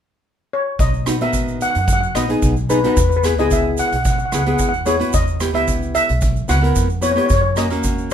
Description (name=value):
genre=calypso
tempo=111 BPM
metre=4/4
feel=swing 53% on 16ths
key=B major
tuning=A4 = 441 Hz
part: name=steel pan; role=melody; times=0.5-8.1 s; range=B4 to F#5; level=-20 LUFS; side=left 2 dB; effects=none
part: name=upright bass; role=bass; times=0.8-8.1 s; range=A#1 to F#2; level=-21 LUFS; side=right 1 dB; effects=none
part: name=street-band drum kit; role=drums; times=0.8-8.1 s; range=hi-hat, kick drum, rim click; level=-22 LUFS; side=equal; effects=none
part: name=egg shaker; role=percussion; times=0.8-8.1 s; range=none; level=-31 LUFS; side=right 6 dB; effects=none
part: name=nylon-string guitar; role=accompaniment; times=1.1-8.1 s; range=D#3 to A#4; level=-20 LUFS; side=equal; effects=none
room=light reverb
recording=minimal, uncompressed stereo recording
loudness=-15 LUFS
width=side -9 dB against mid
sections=0.8-8.1 A section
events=none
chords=0.0 N.C.; 0.8 Bmaj7; 3.0 Eadd9; 5.1 Emadd9; 7.3 F#7